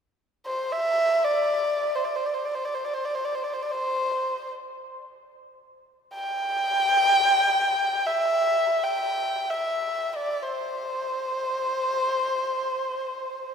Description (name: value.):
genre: chinese traditional.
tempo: free time.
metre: none.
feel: none.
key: C gong mode.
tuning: A4 = 440 Hz.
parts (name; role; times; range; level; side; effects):
warm erhu; solo; 0.5-13.5 s; C5 to G5; -23 LUFS; equal; none.
room: wet church reverb, RT60 3.8 s.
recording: recorded in a church or concert hall.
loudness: -23 LUFS.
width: side -6 dB against mid.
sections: 0.0-13.5 A section.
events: none.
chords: none.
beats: free time.